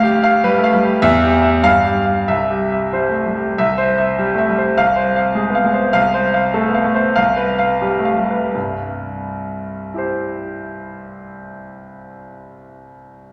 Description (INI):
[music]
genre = classical, virtuoso piano study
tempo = 80-105 BPM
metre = 2/4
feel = rubato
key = C major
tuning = A4 = 440 Hz
[part]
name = clear concert grand piano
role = solo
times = 0.0-13.3 s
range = C2 to F5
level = -17 LUFS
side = equal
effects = none
[sound]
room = wet concert hall reverb, RT60 1.9 s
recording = faint mains hum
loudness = -16 LUFS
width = mono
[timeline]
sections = 0.0-3.6 A section; 3.6-8.5 B section; 8.5-11.3 C section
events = slowing down 5.3-8.5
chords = 0.0 G7/D; 1.0 Em; 1.6 Fsus2/G; 2.3 C; 4.8 Fm/C; 5.9 F/C; 7.1 G7/C; 8.5 C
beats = 0.43 | 1.03 1.63 | 2.27 2.93 | 3.58 4.18 | 4.77 5.35 | 5.93 6.53 | 7.15 7.81 | 8.54 9.25 | 9.94 10.62